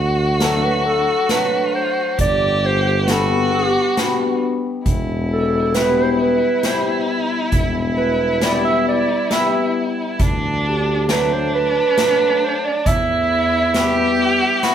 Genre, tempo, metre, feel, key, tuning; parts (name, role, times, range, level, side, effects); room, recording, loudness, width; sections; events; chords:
klezmer; 67 BPM; 3/4; straight; E minor; A4 = 440 Hz
dark clarinet; melody; 0.0-14.7 s; F#4 to E5; -19 LUFS; right 3 dB
rich violin; second line; 0.0-14.7 s; D4 to G4; -22 LUFS; equal
mellow tuba; bass; 0.0-14.5 s; E1 to E2; -22 LUFS; equal
cimbalom; accompaniment; 0.4-14.7 s; B2 to E4; -23 LUFS; left 4 dB
street-band drum kit; drums; 0.4-14.7 s; hi-hat, kick drum, snare drum; -22 LUFS; equal
moderate studio reverb, RT60 0.9 s; band playing live in one room; -15 LUFS; side -9 dB against mid
0.0-14.7 A section
0.0 D; 2.2 G; 4.9 Em; 10.2 D; 12.9 Em